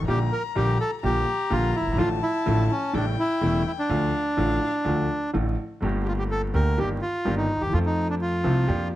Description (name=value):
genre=tango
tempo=126 BPM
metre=4/4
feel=rubato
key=D harmonic minor, G minor from 5.8 s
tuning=A4 = 441 Hz
part: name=warm violin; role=second line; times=0.0-4.8 s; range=F5 to Bb5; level=-33 LUFS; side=left 10 dB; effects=none
part: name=warm concert grand piano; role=accompaniment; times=0.0-8.9 s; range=E1 to A4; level=-27 LUFS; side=equal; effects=none
part: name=upright bass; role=bass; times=0.0-8.9 s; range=E1 to F2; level=-26 LUFS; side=equal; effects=none
part: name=bandoneon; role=melody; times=0.1-8.9 s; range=C#4 to Bb4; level=-26 LUFS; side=right 1 dB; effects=none
room=light reverb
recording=close, detailed microphones, vinyl crackle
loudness=-22 LUFS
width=side -14 dB against mid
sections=0.0-5.8 A section; 5.8-9.0 B section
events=none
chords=0.1 Gm/Bb; 2.0 Dm/A; 2.9 A7; 3.9 Dm; 5.8 Gmadd9; 6.8 Ebmaj7/G; 7.7 F